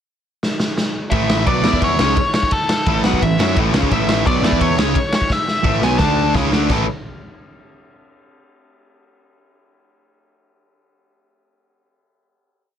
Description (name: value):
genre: punk rock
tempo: 172 BPM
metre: 4/4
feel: straight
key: A major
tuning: A4 = 440 Hz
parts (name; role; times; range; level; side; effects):
- raw garage drum kit; drums; 0.4-6.8 s; crash cymbal, kick drum, ride cymbal, snare drum; -19 LUFS; equal; none
- nasal lead guitar with a parked wah; melody; 1.1-6.3 s; A4 to A5; -20 LUFS; left 1 dB; overdrive
- raw garage guitar; riff; 1.1-6.9 s; A2 to F#4; -22 LUFS; left 14 dB; overdrive
- sludgy distorted guitar; riff; 1.1-6.8 s; A2 to A4; -20 LUFS; right 11 dB; overdrive
- growling picked electric bass; bass; 1.1-6.9 s; A1 to F#2; -22 LUFS; left 1 dB; overdrive
room: light reverb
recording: none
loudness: -14 LUFS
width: side -9 dB against mid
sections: 0.0-1.1 pickup bar; 1.1-6.7 riff; 6.7-8.1 final chord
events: drum fill 0.4-1.1, 5.3-6.7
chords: 0.0 N.C.; 1.1 A5; 1.6 E5; 2.0 A; 4.4 E5; 4.8 A; 6.0 D5; 6.3 A; 6.7 A5